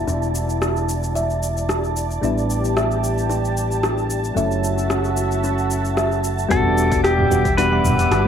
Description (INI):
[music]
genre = sunset chillout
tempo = 112 BPM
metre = 4/4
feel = straight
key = E dorian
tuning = A4 = 440 Hz
[part]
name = soft electric-piano-like synth keys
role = accompaniment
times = 0.0-8.3 s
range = F#3 to F#5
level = -24 LUFS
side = left 1 dB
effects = chorus, auto-pan, low-pass filter, ping-pong delay
[part]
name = lush unison pad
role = sustained chords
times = 0.0-8.3 s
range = G3 to D6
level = -27 LUFS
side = equal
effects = chorus
[part]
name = fretless electric bass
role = bass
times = 0.0-8.3 s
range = E1 to A1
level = -23 LUFS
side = equal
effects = none
[part]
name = wind-like tuned noise texture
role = texture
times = 0.0-6.5 s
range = A5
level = -31 LUFS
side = right 9 dB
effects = built-in reverb
[part]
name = kalimba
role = arpeggios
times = 0.1-8.3 s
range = C#4 to E5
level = -27 LUFS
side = left 1 dB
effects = ping-pong delay
[part]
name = deep house drum kit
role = drums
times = 0.1-8.2 s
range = hi-hat, rim click, shaker, toms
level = -25 LUFS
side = equal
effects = overdrive
[part]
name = pedal steel guitar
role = melody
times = 6.5-8.3 s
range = G4 to B4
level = -20 LUFS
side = left 2 dB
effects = ping-pong delay
[part]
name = electronic kick drum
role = drums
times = 6.5-7.6 s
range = none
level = -24 LUFS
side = equal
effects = overdrive
[sound]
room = light reverb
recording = none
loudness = -17 LUFS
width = side -8 dB against mid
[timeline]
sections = 0.0-6.5 A section; 6.5-8.3 B section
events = filter sweep on synth keys 0.0-6.5; filter sweep on analog synth pad 0.0-6.5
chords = 0.0 Em7; 2.2 A7sus4; 4.4 F#m7; 6.5 Em7